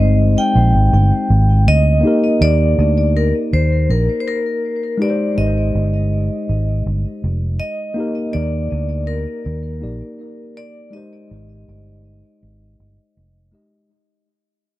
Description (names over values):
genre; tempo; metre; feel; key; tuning
lovers rock reggae; 81 BPM; 4/4; straight; unclear; A4 = 440 Hz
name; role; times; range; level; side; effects
vibraphone with medium hard mallets; melody; 0.0-13.5 s; Bb4 to G5; -22 LUFS; left 1 dB; tape echo
mellow tine electric piano; accompaniment; 0.0-13.9 s; Ab3 to Eb5; -21 LUFS; left 2 dB; tape echo
vintage muted fingered electric bass; bass; 0.0-13.5 s; F1 to Eb2; -15 LUFS; equal; none
room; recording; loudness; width
light reverb; dry, close 1970s-style studio recording; -14 LUFS; side -16 dB against mid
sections
0.0-2.0 A section; 2.0-13.9 B section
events
fade-out 2.0-13.9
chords
0.0 Abmaj7; 2.0 Ebmaj7; 5.0 Abmaj7; 8.0 Ebmaj7; 10.9 Abmaj7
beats
0.54 1.29 | 2.03 2.77 3.51 4.25 | 4.99 5.74 6.48 7.22 | 7.96 8.70 9.44 10.19 | 10.93 11.67 12.41 13.15